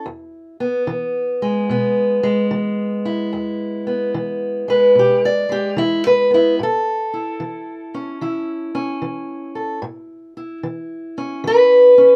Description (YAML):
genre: acoustic country blues, solo or duo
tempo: 74 BPM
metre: 4/4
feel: swing 66% on 8ths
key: E major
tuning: A4 = 440 Hz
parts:
  - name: fingerpicked steel-string acoustic guitar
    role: solo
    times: 0.0-12.2 s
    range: E2 to D5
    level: -18 LUFS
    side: equal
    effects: none
room: light reverb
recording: none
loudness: -18 LUFS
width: mono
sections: 0.0-12.2 A section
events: none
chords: 0.1 E; 6.6 A